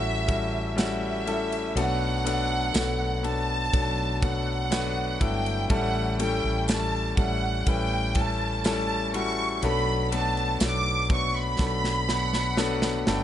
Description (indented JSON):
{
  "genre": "pop ballad",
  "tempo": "61 BPM",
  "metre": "4/4",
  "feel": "straight",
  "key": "B minor",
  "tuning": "A4 = 444 Hz",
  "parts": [
    { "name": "clear studio violin section", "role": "melody", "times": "0.0-13.2 s", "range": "E5 to D6", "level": "-29 LUFS", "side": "right 2 dB", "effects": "none" },
    { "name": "clear concert grand piano", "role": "accompaniment", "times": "0.0-13.2 s", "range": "A2 to B4", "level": "-29 LUFS", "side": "left 3 dB", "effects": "none" },
    { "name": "woody fretless electric bass", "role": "bass", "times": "0.0-13.2 s", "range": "G1 to B1", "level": "-30 LUFS", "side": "equal", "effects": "none" },
    { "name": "modern studio drum kit", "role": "drums", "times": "0.3-13.2 s", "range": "kick drum, ride cymbal, snare drum", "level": "-30 LUFS", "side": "right 1 dB", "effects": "none" },
    { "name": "tambourine", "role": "percussion", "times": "0.8-12.8 s", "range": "none", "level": "-38 LUFS", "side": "right 12 dB", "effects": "none" }
  ],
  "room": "small room ambience",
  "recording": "nothing above 11.0 kHz",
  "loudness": "-23 LUFS",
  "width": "side -11 dB against mid",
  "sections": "0.0-13.2 A section",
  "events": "drum fill 11.6-13.2",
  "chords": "0.0 A7; 1.8 Bm7; 5.7 A7; 9.6 Bm7"
}